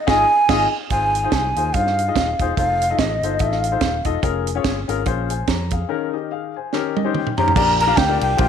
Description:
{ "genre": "uptempo gospel", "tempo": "144 BPM", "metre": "4/4", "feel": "swing 57% on 8ths", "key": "Ab major", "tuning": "A4 = 438 Hz", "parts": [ { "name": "breathy bass bansuri", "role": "melody", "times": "0.1-4.1, 7.4-8.5 s", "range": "Eb5 to Bb5", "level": "-19 LUFS", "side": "right 1 dB", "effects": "slapback echo" }, { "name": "clear grand piano", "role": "accompaniment", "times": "0.1-8.5 s", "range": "Ab2 to C6", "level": "-23 LUFS", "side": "left 12 dB", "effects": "none" }, { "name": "fingered electric bass", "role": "bass", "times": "0.1-8.5 s", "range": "Eb1 to G2", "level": "-24 LUFS", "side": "equal", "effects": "none" }, { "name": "tight funk drum kit", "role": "drums", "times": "0.1-8.5 s", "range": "crash cymbal, hi-hat, kick drum, ride cymbal, snare drum, toms", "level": "-22 LUFS", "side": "right 4 dB", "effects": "none" } ], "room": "moderate echo chamber reverb, RT60 1.4 s, small room reverb", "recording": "1960s-style stereo", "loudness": "-17 LUFS", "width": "side -8 dB against mid", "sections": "0.9-7.6 A section", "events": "band accent 0.0-0.9; grand piano fill 6.7-7.6; drum fill 6.7-7.6", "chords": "0.0 Ab5; 0.9 Ab6; 2.6 F7; 4.2 Bbm7/F; 5.9 Eb7sus4; 6.7 Eb7; 7.6 Bb6" }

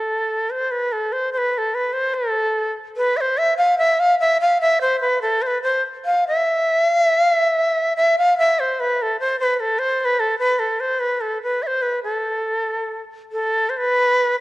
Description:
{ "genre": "japanese traditional", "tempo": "72 BPM", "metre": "2/4", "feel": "rubato", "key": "A hirajoshi", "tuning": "A4 = 439 Hz", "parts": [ { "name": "bright reedy shakuhachi", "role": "solo", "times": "0.0-14.4 s", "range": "A4 to F5", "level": "-17 LUFS", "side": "equal", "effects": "none" } ], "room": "moderate concert hall reverb, RT60 1.9 s", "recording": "worn, warbling old tape, cassette tape, warbly pitch drift", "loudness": "-17 LUFS", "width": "side -18 dB against mid", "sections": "0.5-13.8 A section", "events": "none", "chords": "none" }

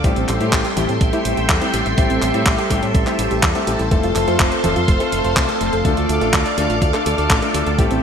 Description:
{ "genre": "italo disco", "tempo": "124 BPM", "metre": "4/4", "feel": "straight", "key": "A minor", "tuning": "A4 = 440 Hz", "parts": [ { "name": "string machine, full ensemble", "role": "sustained chords", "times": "0.0-8.0 s", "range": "A4 to D6", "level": "-21 LUFS", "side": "equal", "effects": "ensemble chorus" }, { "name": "soft round pluck", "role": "arpeggios", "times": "0.0-8.0 s", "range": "G3 to D5", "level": "-25 LUFS", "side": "right 2 dB", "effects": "chorus, ping-pong delay" }, { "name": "clear concert grand piano", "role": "stabs", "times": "0.0-8.0 s", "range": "A3 to A4", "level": "-23 LUFS", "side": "left 4 dB", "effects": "ping-pong delay" }, { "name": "fingered electric bass with an envelope filter", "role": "bass", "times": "0.0-8.0 s", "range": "F1 to A2", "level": "-23 LUFS", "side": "equal", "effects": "none" }, { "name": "clean 12-bit digital drum machine", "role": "drums", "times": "0.0-8.0 s", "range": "congas, handclaps, hi-hat", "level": "-22 LUFS", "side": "right 1 dB", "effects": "studio reverb, gated reverb" }, { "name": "electronic kick drum", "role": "drums", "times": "0.0-7.9 s", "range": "none", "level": "-19 LUFS", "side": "equal", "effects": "studio reverb" } ], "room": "wet lush hall reverb, RT60 1.9 s", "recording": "bright 1980s-style digital production", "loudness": "-15 LUFS", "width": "side -7 dB against mid", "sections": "0.0-8.0 A section", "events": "none", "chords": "0.0 Am7; 3.9 F; 5.8 Dm" }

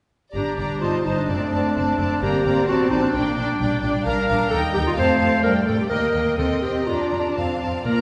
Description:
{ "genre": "quick classical-period movement for symphony orchestra", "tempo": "129 BPM", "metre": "2/4", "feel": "rubato", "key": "G minor, Bb major from 4.1 s", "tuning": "A4 = 440 Hz", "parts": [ { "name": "rich chamber violin section", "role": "melody", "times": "0.3-8.0 s", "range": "D5 to Bb5", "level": "-34 LUFS", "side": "equal", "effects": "none" }, { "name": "clear clarinet", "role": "second line", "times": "0.3-8.0 s", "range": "D4 to C5", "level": "-25 LUFS", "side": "equal", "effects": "none" }, { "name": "rich chamber violin section", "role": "second line", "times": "0.3-8.0 s", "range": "C5 to Bb5", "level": "-31 LUFS", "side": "equal", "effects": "none" }, { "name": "rich chamber viola section", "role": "accompaniment", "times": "0.3-8.0 s", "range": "G3 to F4", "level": "-30 LUFS", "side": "equal", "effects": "none" }, { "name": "rich chamber double bass section", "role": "bass", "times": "0.3-8.0 s", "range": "F#1 to G2", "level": "-30 LUFS", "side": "equal", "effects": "none" }, { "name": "warm studio cello section", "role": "bass", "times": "0.3-8.0 s", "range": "Bb2 to D4", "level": "-29 LUFS", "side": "equal", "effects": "none" }, { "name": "mellow French horn section", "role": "sustained chords", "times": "7.9-8.0 s", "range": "Bb3", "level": "-24 LUFS", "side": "equal", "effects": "none" } ], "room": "wet scoring stage reverb, RT60 1.9 s", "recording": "recorded in a church or concert hall, nothing above 10.6 kHz", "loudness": "-21 LUFS", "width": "mono", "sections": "0.3-7.9 A section", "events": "none", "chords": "0.3 Gm; 0.8 Am7b5/G; 1.3 D7/F#; 2.2 Gm; 2.7 D7/A; 3.1 Gm/Bb; 4.5 Eb; 5.0 F; 5.4 Gm; 5.9 Eb; 6.4 Cm; 6.9 Bb/F; 7.4 F" }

